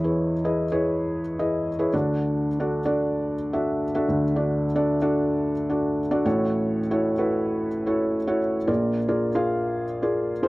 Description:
pop; 111 BPM; 4/4; straight; A4 = 440 Hz
felt-muted upright piano; solo; 0.0-10.5 s; A1 to E#5; -22 LUFS; equal
light reverb; dry, close 1970s-style studio recording; -22 LUFS; side -20 dB against mid
0.0-10.5 A section
0.0 E6; 1.9 D; 6.3 A6; 8.7 A#7

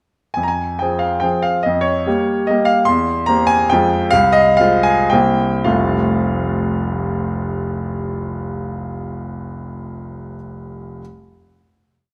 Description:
classical, romantic triple-time dance for piano with dotted rhythms; 104-158 BPM; 3/4; rubato; A4 = 442 Hz
bright grand piano; solo; 0.3-11.0 s; F1 to C6; -18 LUFS; equal
moderate recital hall reverb, RT60 1.6 s; close, detailed microphones; -17 LUFS; mono
0.4-5.7 A section; 5.7-8.9 final chord
slowing down 2.3-5.7
0.4 Fm; 1.6 Gm7b5/F; 2.9 C7/E; 3.7 Fm; 4.1 Fm/C; 5.1 C7; 5.7 F

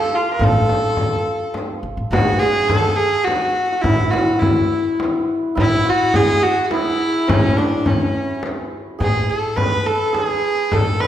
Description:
Persian modal ensemble; 105 BPM; 3/4; straight; A dastgah mahur; A4 = 438 Hz
bright kamancheh; melody; 0.0-11.1 s; C#4 to B4; -19 LUFS; equal
santur; second line; 0.0-11.1 s; C#4 to D5; -22 LUFS; right 1 dB
upright bass; bass; 0.4-11.0 s; G1 to A1; -24 LUFS; equal
frame drum; percussion; 0.4-11.1 s; -21 LUFS; left 1 dB
wet recital hall reverb, RT60 1.5 s; recorded in a church or concert hall; -15 LUFS; side -11 dB against mid
0.0-2.1 A section; 2.1-11.1 B section

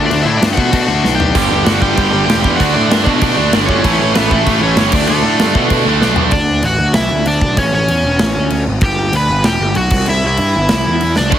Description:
punk rock; 193 BPM; 4/4; straight; A4 = 441 Hz
cranked stack guitar; melody; 0.0-11.4 s; A3 to B5; -17 LUFS; equal; overdrive, ping-pong delay
tight distorted guitar; riff; 0.0-6.3, 11.3-11.4 s; G2 to D4; -18 LUFS; left 9 dB; distortion
fuzz picked electric bass; bass; 0.0-11.4 s; E1 to B2; -17 LUFS; equal; overdrive
big rock drum kit; drums; 0.1-11.4 s; crash cymbal, kick drum, snare drum, splash cymbal, toms; -17 LUFS; equal
tight distorted guitar; riff; 1.4-6.3, 11.3-11.4 s; G2 to D4; -17 LUFS; right 16 dB; distortion
light reverb; heavily compressed radio sound, multiband compression; -11 LUFS; side -10 dB against mid
0.0-6.3 A section; 6.3-11.4 B section
drum fill 1.0-1.4, 6.0-6.3, 11.2; half time 6.3-11.4
0.0 D; 1.4 G5; 2.6 D; 3.8 A; 4.9 D5; 6.3 D; 7.6 A; 8.8 G; 9.9 C

